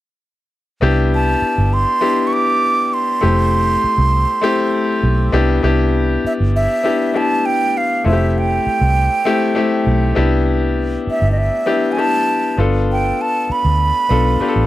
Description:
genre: soul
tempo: 99 BPM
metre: 4/4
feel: straight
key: C major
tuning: A4 = 439 Hz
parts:
  - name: bright baby grand piano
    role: accompaniment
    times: 0.8-14.7 s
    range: A3 to A4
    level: -18 LUFS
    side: left 4 dB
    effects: none
  - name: vintage muted fingered electric bass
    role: bass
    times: 0.8-14.7 s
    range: F1 to D2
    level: -16 LUFS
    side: right 1 dB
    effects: none
  - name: breathy concert flute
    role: melody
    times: 1.1-14.7 s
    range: Eb5 to D6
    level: -18 LUFS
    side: right 2 dB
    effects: none
room: little or no reverb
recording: dry, close 1970s-style studio recording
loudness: -14 LUFS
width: side -15 dB against mid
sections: 0.8-5.6 A section; 5.6-14.7 B section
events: none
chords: 0.8 Cmaj7; 3.2 Fmaj9; 5.3 Cmaj7; 8.1 Fmaj9; 10.2 Cmaj7; 12.6 G7

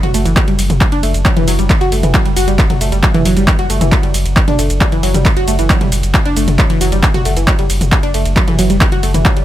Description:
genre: driving peak-time techno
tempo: 135 BPM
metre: 4/4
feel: straight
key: F# phrygian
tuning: A4 = 440 Hz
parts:
  - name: analog pluck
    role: riff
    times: 0.0-9.4 s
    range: E3 to F#4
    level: -17 LUFS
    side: equal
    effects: chorus, phaser, tube saturation, sidechain pumping, tape echo
  - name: saturated sub bass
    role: bass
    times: 0.0-9.4 s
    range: F#1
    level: -17 LUFS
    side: equal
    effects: tube saturation, sidechain pumping, low-pass filter
  - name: punchy analog drum machine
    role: drums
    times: 0.0-9.4 s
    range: handclaps, hi-hat, ride cymbal, shaker, toms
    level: -17 LUFS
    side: equal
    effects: sidechain pumping on hats, sidechain pumping on toms, sidechain pumping on cymbals, sidechain pumping on perc
  - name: electronic kick drum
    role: drums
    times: 0.4-9.3 s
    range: none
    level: -14 LUFS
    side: equal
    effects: none
room: digital ambience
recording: none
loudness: -10 LUFS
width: side -13 dB against mid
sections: 0.0-9.4 A section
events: none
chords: none

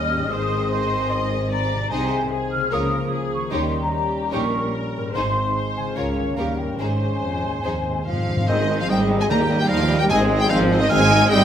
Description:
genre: classical, dramatic, fast romantic movement for symphony orchestra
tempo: 148 BPM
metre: 4/4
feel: straight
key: Ab major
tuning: A4 = 440 Hz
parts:
  - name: warm symphonic violin section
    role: melody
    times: 0.0-11.4 s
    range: C5 to Bb5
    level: -26 LUFS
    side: left 1 dB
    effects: none
  - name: mellow large flute ensemble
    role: second line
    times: 0.0-11.4 s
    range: Eb5 to F6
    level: -26 LUFS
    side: left 1 dB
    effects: none
  - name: warm symphonic violin section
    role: second line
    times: 0.0-11.4 s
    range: C4 to G5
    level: -31 LUFS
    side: left 2 dB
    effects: none
  - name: rich symphonic viola section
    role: accompaniment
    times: 0.0-11.4 s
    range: G3 to Eb5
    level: -28 LUFS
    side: right 1 dB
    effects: none
  - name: warm French horn section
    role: sustained chords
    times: 0.0-11.4 s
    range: Eb3 to Db4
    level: -28 LUFS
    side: left 3 dB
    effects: none
  - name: concert harp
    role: arpeggios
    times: 0.0-11.4 s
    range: Ab2 to C5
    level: -31 LUFS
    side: left 8 dB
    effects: none
  - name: rich studio cello section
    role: bass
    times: 0.0-11.4 s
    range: Db2 to Bb3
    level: -26 LUFS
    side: right 2 dB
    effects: none
  - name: rich symphonic double bass section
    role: bass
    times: 0.0-11.4 s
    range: Ab1 to Eb2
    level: -28 LUFS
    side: right 3 dB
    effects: none
  - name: timpani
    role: percussion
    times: 0.0-0.1, 3.5-4.1, 6.8-10.7 s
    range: Ab2 to Eb3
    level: -29 LUFS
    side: left 1 dB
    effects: none
  - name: mellow clarinet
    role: second line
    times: 8.5-11.4 s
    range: Bb3 to C4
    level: -30 LUFS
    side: left 1 dB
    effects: none
  - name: warm oboe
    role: second line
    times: 8.5-11.4 s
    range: G4 to F5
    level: -26 LUFS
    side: right 3 dB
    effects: none
  - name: warm bassoon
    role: accompaniment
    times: 8.5-11.4 s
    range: G3 to Ab3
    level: -29 LUFS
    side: right 3 dB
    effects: none
  - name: warm tuba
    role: bass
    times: 8.5-11.4 s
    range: Ab1 to Eb2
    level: -27 LUFS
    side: right 3 dB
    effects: none
room: moderate recital hall reverb, RT60 1.3 s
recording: none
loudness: -19 LUFS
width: side -9 dB against mid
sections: 0.0-8.5 A section; 8.5-11.4 B section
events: timpani fill 6.8-8.5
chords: 0.3 Ab; 1.9 Ab/C; 2.7 Bbm/Db; 3.5 Eb7; 5.1 Ab; 6.0 Bbm/Db; 6.4 Eb7; 6.8 Ab; 9.3 Eb; 10.1 Ab

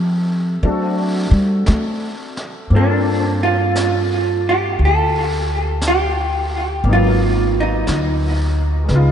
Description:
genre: jazz ballad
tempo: 58 BPM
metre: 4/4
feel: swing 66% on 8ths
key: G minor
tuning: A4 = 441 Hz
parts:
  - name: warm baby grand piano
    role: accompaniment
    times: 0.0-9.1 s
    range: Gb3 to A4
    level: -24 LUFS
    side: left 2 dB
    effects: ensemble chorus
  - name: upright bass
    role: bass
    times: 0.0-9.1 s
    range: Ab1 to A3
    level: -17 LUFS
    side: equal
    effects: none
  - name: jazz brush drum kit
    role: drums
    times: 0.6-9.1 s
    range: brushed snare drum, hi-hat, snare drum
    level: -30 LUFS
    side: equal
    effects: none
  - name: vintage hollow-body jazz guitar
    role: melody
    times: 2.8-9.1 s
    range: D4 to A4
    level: -18 LUFS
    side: right 2 dB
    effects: lush chorus, diffuse ambient delay
room: moderate lush hall reverb, RT60 2.8 s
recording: dreamy mix soaked in reverb, nothing above 11.0 kHz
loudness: -15 LUFS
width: side -8 dB against mid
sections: 0.0-2.7 A section; 2.7-9.1 B section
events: upright bass solo 0.0-2.7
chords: 0.0 Am7b5; 0.6 D7; 2.7 Gm11; 6.8 Abm7

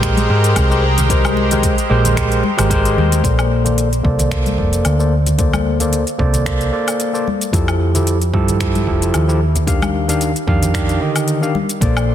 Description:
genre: sunset chillout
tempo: 112 BPM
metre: 4/4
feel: swing 55% on 16ths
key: Bb major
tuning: A4 = 438 Hz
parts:
  - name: overdriven tine electric piano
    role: accompaniment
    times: 0.0-12.1 s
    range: D3 to F5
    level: -18 LUFS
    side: moving between left 5 dB and right 3 dB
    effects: auto-pan, low-pass filter, ping-pong delay
  - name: lush unison pad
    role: sustained chords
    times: 0.0-3.2, 12.1 s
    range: Ab3 to D5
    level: -22 LUFS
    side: right 1 dB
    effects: chorus
  - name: hollow-body short-scale fingered electric bass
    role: bass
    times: 0.0-12.1 s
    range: F1 to Ab2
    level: -16 LUFS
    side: equal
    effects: none
  - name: deep house drum kit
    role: drums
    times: 0.0-12.1 s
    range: finger snaps, hi-hat, shaker, woodblock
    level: -24 LUFS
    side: left 2 dB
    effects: soft clipping on snare
  - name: electronic kick drum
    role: drums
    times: 0.0-11.9 s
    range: none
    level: -20 LUFS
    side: equal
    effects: none
  - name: congas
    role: percussion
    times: 0.2-11.7 s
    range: none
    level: -26 LUFS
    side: left 2 dB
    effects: none
  - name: drifting glass-harmonics texture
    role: texture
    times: 11.9-12.1 s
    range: C6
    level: -38 LUFS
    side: right 6 dB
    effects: none
room: light reverb, digital ambience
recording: dense, heavily limited modern master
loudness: -13 LUFS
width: side -10 dB against mid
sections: 0.0-3.3 A section; 3.3-12.1 B section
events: filter sweep on tine electric piano 3.3-12.1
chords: 0.0 Abmaj9; 3.3 Bbmaj9; 7.5 Fmaj9; 9.4 Ebmaj9

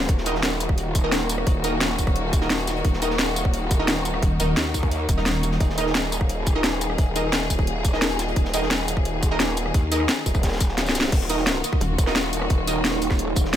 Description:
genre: dark technical drum and bass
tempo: 174 BPM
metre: 4/4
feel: straight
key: Eb minor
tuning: A4 = 440 Hz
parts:
  - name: rich studio string section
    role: sustained chords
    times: 0.0-13.6 s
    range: Eb3 to Ab4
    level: -29 LUFS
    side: left 2 dB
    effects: sidechain pumping
  - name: growl bass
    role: bass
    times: 0.0-13.6 s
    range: Eb1 to Eb2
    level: -26 LUFS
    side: equal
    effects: chorus, tube saturation, sidechain pumping
  - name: crunchy breakbeat drum kit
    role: drums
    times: 0.1-13.6 s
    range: hi-hat, snare drum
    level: -36 LUFS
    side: equal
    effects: none
  - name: drum and bass drum kit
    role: drums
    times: 0.1-13.6 s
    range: crash cymbal, hi-hat, rim click, snare drum, tambourine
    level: -25 LUFS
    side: left 1 dB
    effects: overdrive
  - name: electronic kick drum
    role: drums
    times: 0.1-13.4 s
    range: none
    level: -21 LUFS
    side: equal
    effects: none
  - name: orchestra-hit-like synth stab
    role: stabs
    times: 0.3-12.7 s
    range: Eb4 to Eb5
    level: -29 LUFS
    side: right 2 dB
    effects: built-in reverb, cassette tape, digital delay
  - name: pulsing pluck wobble bass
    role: bass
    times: 4.2-5.6, 11.8-12.0 s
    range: Eb1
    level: -23 LUFS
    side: equal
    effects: chorus
  - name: deep dark ambient pad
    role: texture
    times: 11.7-13.6 s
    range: Eb4 to Db5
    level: -31 LUFS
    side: right 4 dB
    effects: chorus, built-in reverb, sidechain pumping
room: little or no reverb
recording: none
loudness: -20 LUFS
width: side -10 dB against mid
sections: 0.0-11.1 A section; 11.1-13.6 A section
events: drop 0.0-11.1, 11.1-13.6; drum fill 10.8-11.1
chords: 0.0 Ebm

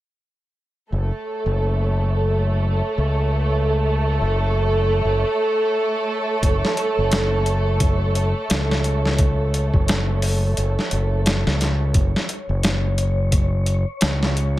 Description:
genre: trip hop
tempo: 87 BPM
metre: 4/4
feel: swing 59% on 16ths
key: F# minor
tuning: A4 = 440 Hz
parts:
  - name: dark studio violin section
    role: sustained chords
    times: 0.9-12.0 s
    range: A3 to A4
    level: -23 LUFS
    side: right 1 dB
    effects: none
  - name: growling fingered electric bass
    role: bass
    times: 0.9-14.6 s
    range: F#1 to C#2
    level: -20 LUFS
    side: equal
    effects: overdrive, tube saturation
  - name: wind-like tuned noise texture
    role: texture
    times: 1.3-14.6 s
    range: C#5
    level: -31 LUFS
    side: right 2 dB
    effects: built-in reverb
  - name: boom bap sampler-style drum kit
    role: drums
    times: 6.4-14.6 s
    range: hi-hat, kick drum, snare drum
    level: -21 LUFS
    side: equal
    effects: none
room: little or no reverb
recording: none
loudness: -18 LUFS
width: side -15 dB against mid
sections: 0.9-12.0 A section; 12.0-14.6 B section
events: kick drops out 10.6-12.0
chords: 0.9 F#m; 12.0 F#5

